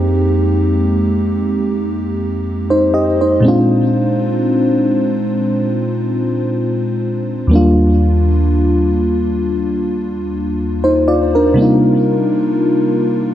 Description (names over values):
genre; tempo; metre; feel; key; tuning
R&B; 59 BPM; 4/4; swing 54% on 16ths; unclear; A4 = 442 Hz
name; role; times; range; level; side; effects
FM electric piano with soft pad layer; solo; 0.0-13.3 s; Eb2 to Eb5; -12 LUFS; equal; chorus, ping-pong delay
room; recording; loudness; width
light reverb, digital ambience; dark, warm production; -13 LUFS; side -11 dB against mid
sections
0.0-13.3 A section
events
none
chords
0.0 Fm9; 3.4 Bb7; 7.5 Ebmaj7; 11.6 Cm11